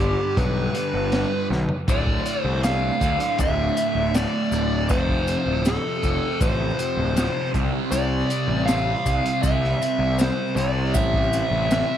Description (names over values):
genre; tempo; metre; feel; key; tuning
psychedelic rock; 79 BPM; 4/4; straight; unclear; A4 = 440 Hz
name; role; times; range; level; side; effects
fuzz lead guitar; melody; 0.0-12.0 s; G4 to F5; -25 LUFS; left 1 dB; distortion, dub echo
thick fuzz guitar; riff; 0.0-12.0 s; D2 to C4; -26 LUFS; right 1 dB; distortion, phaser, dub echo
fuzz picked electric bass; bass; 0.0-11.8 s; D1 to D2; -25 LUFS; equal; overdrive
crunchy breakbeat drum kit; drums; 0.0-11.9 s; hi-hat, kick drum, snare drum, toms; -26 LUFS; equal; none
maracas; percussion; 1.9-11.9 s; none; -38 LUFS; left 16 dB; dub echo
room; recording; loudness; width
light reverb, studio reverb; echo-heavy mix; -20 LUFS; side -10 dB against mid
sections
0.0-12.0 A section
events
drum fill 1.5-1.9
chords
0.0 G; 1.9 Dm; 4.9 F; 7.5 C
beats
0.37 1.13 | 1.88 2.63 3.39 4.14 | 4.90 5.65 6.41 7.16 | 7.92 8.68 9.43 10.19 | 10.95 11.71